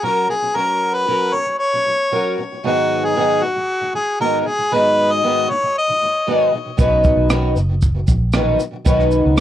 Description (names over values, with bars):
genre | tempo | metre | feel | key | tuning
acoustic pop | 116 BPM | 4/4 | straight | unclear | A4 = 440 Hz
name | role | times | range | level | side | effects
warm harmonica | melody | 0.0-6.5 s | F#4 to D#5 | -18 LUFS | left 1 dB | ping-pong delay
fingerpicked twelve-string acoustic guitar | accompaniment | 0.0-9.4 s | G#2 to B4 | -18 LUFS | equal | double-tracked left and right
vintage muted fingered electric bass | bass | 6.8-9.4 s | F#1 to C#2 | -18 LUFS | equal | none
compact cocktail drum kit | drums | 6.8-9.4 s | kick drum, rim click, shaker | -18 LUFS | equal | none
room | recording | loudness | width
light reverb | worn, warbling old tape, cassette tape, warbly pitch drift | -15 LUFS | side -12 dB against mid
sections
0.0-9.4 A section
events
none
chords
0.0 F#; 2.6 G#m7; 6.5 Badd9